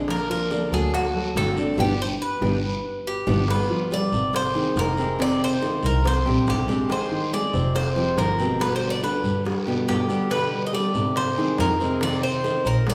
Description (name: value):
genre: latin, Cuban son and guajira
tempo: 141 BPM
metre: 4/4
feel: straight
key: unclear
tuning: A4 = 438 Hz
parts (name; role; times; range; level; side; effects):
- picked steel-string acoustic guitar; accompaniment; 0.0-12.9 s; B2 to Ab4; -32 LUFS; equal; none
- dark baby grand piano; arpeggios; 0.0-12.9 s; B2 to D5; -29 LUFS; equal; none
- warm double bass; bass; 0.0-12.9 s; F1 to Ab2; -29 LUFS; equal; none
- Cuban tres; melody; 0.1-12.9 s; F#4 to Eb5; -28 LUFS; equal; none
- bongos; percussion; 0.1-12.9 s; none; -36 LUFS; equal; none
- guiro; percussion; 0.1-12.9 s; none; -42 LUFS; equal; none
room: wet recital hall reverb, RT60 1.8 s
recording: recorded in a church or concert hall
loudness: -23 LUFS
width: mono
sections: 0.0-3.5 A section; 3.5-12.9 B section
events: band accent 1.8-3.5; drum fill 2.9-3.5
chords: 0.1 Bb; 0.9 D7; 1.8 G; 3.5 G7; 4.3 Fm7; 6.1 Csus2; 6.9 Ab; 7.8 Fmadd9; 8.6 G; 11.2 Ab; 12.0 Fm7